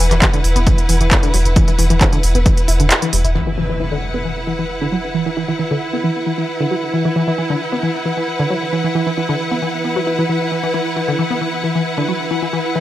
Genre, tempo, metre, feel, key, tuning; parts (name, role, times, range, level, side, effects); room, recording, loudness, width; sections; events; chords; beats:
driving peak-time techno; 134 BPM; 4/4; straight; A4 = 440 Hz
tight sequenced synth; riff; 0.0-12.8 s; D3 to E4; -20 LUFS; left 1 dB; chorus, phaser, tube saturation, sidechain pumping, analog delay
saturated sub bass; bass; 0.0-3.4 s; E1; -16 LUFS; equal; tube saturation, sidechain pumping, low-pass filter
bright studio string section; texture; 0.0-12.8 s; E4 to F#5; -21 LUFS; equal; sidechain pumping
techno drum kit; drums; 0.1-3.3 s; handclaps, hi-hat; -18 LUFS; right 1 dB; low-pass filter on hats, low-pass filter on snare, low-pass filter on room
electronic kick drum; drums; 0.2-2.6 s; -15 LUFS; equal
metallic inharmonic drone; drone; 4.0-12.8 s; E3; -26 LUFS; right 7 dB; chorus, built-in reverb, sidechain pumping
impact; sound effects; 3.4-5.1 s; -25 LUFS; equal
light reverb, digital ambience; dry, gritty hardware recording; -15 LUFS; side -14 dB against mid
0.0-3.4 A section; 3.4-12.8 B section
kick drops out 2.9-3.4; band accent 2.9; impact 3.4-5.1
0.0 E5
0.22 0.67 1.11 | 1.56 2.01 2.46 2.91 | 3.35 3.80 4.25 4.70 | 5.14 5.59 6.04 6.49 | 6.94 7.38 7.83 8.28 | 8.73 9.17 9.62 10.07 | 10.52 10.96 11.41 11.86 | 12.31 12.76